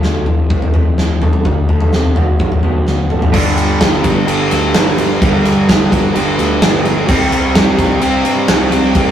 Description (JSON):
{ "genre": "quiet-loud alternative rock", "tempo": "128 BPM", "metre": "4/4", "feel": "straight", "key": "G major", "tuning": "A4 = 441 Hz", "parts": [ { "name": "fingerpicked steel-string acoustic guitar", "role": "arpeggios", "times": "0.0-3.3 s", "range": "D3 to A4", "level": "-22 LUFS", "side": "right 3 dB", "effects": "none" }, { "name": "fuzz picked electric bass", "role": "bass", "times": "0.0-9.1 s", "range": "F1 to C3", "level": "-20 LUFS", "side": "right 1 dB", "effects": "overdrive" }, { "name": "big rock drum kit", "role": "drums", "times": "0.0-9.1 s", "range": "crash cymbal, kick drum, ride cymbal, snare drum, toms", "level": "-13 LUFS", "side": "equal", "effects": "none" }, { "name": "fuzz guitar", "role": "riff", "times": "3.3-9.1 s", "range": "G2 to C4", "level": "-14 LUFS", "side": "right 1 dB", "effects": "distortion" } ], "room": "light reverb", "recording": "rough rehearsal-room recording, warm saturation", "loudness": "-11 LUFS", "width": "side -10 dB against mid", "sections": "0.0-3.3 A section; 3.3-9.1 B section", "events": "drum fill 2.9-3.3", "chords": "0.0 Fmaj7; 1.4 D6; 3.3 G5; 7.1 C5" }